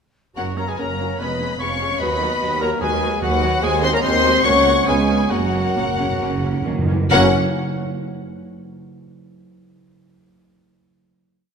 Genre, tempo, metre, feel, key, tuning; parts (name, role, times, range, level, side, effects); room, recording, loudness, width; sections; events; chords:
classical, dramatic, fast romantic movement for symphony orchestra; 131-150 BPM; 4/4; straight; F# major; A4 = 441 Hz
rich symphonic violin section; melody; 0.4-7.3 s; F#5 to C#6; -23 LUFS; left 3 dB
clear oboe; second line; 0.4-7.3 s; F#4 to C#5; -28 LUFS; right 2 dB
mellow clarinet; second line; 0.4-7.3 s; F#4 to C#5; -28 LUFS; left 2 dB
rich chamber violin section; second line; 0.4-7.4 s; A#4 to F#5; -28 LUFS; left 5 dB
silver concert flute; second line; 0.4-7.3 s; F#5 to C#6; -27 LUFS; left 2 dB
rich symphonic viola section; accompaniment; 0.4-7.4 s; F#3 to F#4; -27 LUFS; right 3 dB
dark French horn section; sustained chords; 0.4-7.3 s; F#3 to C#4; -25 LUFS; left 4 dB
rich chamber cello section; bass; 0.4-7.3 s; C#2 to D#3; -25 LUFS; right 3 dB
rich symphonic double bass section; bass; 0.4-7.3 s; E#1 to D#2; -26 LUFS; right 5 dB
timpani; percussion; 5.3-7.3 s; F#2; -25 LUFS; right 1 dB
wet concert hall reverb, RT60 2.3 s; minimal, uncompressed stereo recording; -16 LUFS; side -6 dB against mid
0.4-7.1 A section; 7.1-8.9 final chord
slowing down 2.8-7.1; timpani fill 5.3-7.1
0.4 F#; 1.2 C#/E#; 2.0 B/D#; 3.6 G#7/D#; 4.4 F#/C#; 4.9 C#7; 5.3 F#